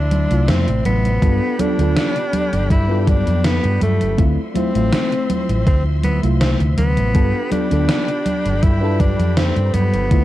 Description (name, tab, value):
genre	vaporwave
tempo	81 BPM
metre	4/4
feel	straight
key	unclear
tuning	A4 = 439 Hz
part	clear tenor saxophone	melody	0.0-10.2 s	A3 to E4	-23 LUFS	equal	tape echo
part	mellow FM electric piano	accompaniment	0.0-10.2 s	C3 to B4	-23 LUFS	left 2 dB	phaser, lush chorus
part	clear symphonic string section	sustained chords	0.0-10.2 s	F3 to C6	-33 LUFS	left 2 dB	none
part	hollow-body short-scale fingered electric bass	bass	0.0-10.2 s	G1 to G2	-18 LUFS	equal	none
part	gated 80s digital drum machine	drums	0.1-10.2 s	congas, hi-hat, snare drum	-22 LUFS	equal	gated reverb, gated reverb snare, overdrive
part	electronic kick drum	drums	1.2-10.2 s	none	-16 LUFS	equal	overdrive
room	digital ambience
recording	dark, warm production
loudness	-15 LUFS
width	side -14 dB against mid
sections	0.0-10.2 A section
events	none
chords	0.0 Dm9; 1.2 G7; 4.2 Dm9; 7.2 G7